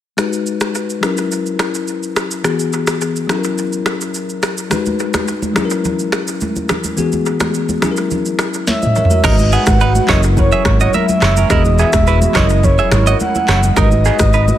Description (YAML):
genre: afrobeats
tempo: 106 BPM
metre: 4/4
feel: straight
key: F# mixolydian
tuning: A4 = 440 Hz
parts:
  - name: bell-like tine electric piano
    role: accompaniment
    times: 0.2-14.6 s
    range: E3 to E5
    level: -19 LUFS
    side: left 5 dB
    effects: low-pass filter, dub echo
  - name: afro-pop drum kit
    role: drums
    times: 0.2-14.6 s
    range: crash cymbal, finger snaps, handclaps, kick drum, rim click, shaker, snare drum, toms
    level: -18 LUFS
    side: equal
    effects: dub echo
  - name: congas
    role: percussion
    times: 4.7-14.6 s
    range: none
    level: -23 LUFS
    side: right 2 dB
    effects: dub echo
  - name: breathy flute-like synth lead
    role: melody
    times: 8.7-14.6 s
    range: C#5 to F#5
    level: -18 LUFS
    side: right 1 dB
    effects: chorus, dub echo
  - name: hollow soft pad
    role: sustained chords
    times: 9.2-14.6 s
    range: F#3 to B4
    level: -24 LUFS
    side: equal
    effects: ensemble chorus
  - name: direct-recorded clean electric guitar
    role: riff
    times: 9.2-14.5 s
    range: B3 to E5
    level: -20 LUFS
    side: right 7 dB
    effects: dub echo
  - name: hollow-body short-scale fingered electric bass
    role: bass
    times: 9.2-14.5 s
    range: E1 to G#1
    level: -14 LUFS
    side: equal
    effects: none
room: light reverb, digital ambience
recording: echo-heavy mix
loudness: -13 LUFS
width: side -12 dB against mid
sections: 0.2-9.2 A section; 9.2-14.6 B section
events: filter sweep on tine electric piano 0.2-9.2; drum fill 8.7-9.2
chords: 0.2 G#m7; 1.0 F#7; 2.4 Eadd9; 3.3 F#7; 4.7 G#m7; 5.6 F#7; 7.0 Eadd9; 7.8 F#7; 9.2 G#m7; 10.1 F#7; 11.5 Eadd9; 12.4 F#7; 13.8 G#m7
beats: | 0.18 0.75 1.31 1.88 | 2.45 3.01 3.58 4.15 | 4.71 5.28 5.84 6.41 | 6.98 7.54 8.11 8.67 | 9.24 9.81 10.37 10.94 | 11.50 12.07 12.64 13.20 | 13.77 14.33